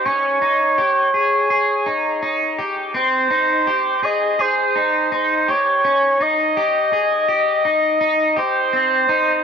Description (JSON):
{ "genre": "dream pop", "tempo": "83 BPM", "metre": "4/4", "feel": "straight", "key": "Ab major", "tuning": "A4 = 439 Hz", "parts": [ { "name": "warm oboe", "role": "melody", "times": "0.0-9.4 s", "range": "C5 to Eb5", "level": "-17 LUFS", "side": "right 1 dB", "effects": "tape echo" }, { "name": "electric guitar at the edge of break-up", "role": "arpeggios", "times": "0.0-9.4 s", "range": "C4 to Ab4", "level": "-20 LUFS", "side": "left 1 dB", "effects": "lush chorus, tape echo" } ], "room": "moderate plate reverb, RT60 3.3 s", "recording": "worn, warbling old tape, cassette tape, warbly pitch drift", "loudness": "-15 LUFS", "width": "side -6 dB against mid", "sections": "0.0-8.7 A section", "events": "none", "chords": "0.1 Dbsus2; 3.0 Abmaj7; 5.8 Dbsus2; 7.3 Eb; 8.7 Ab (rootless)" }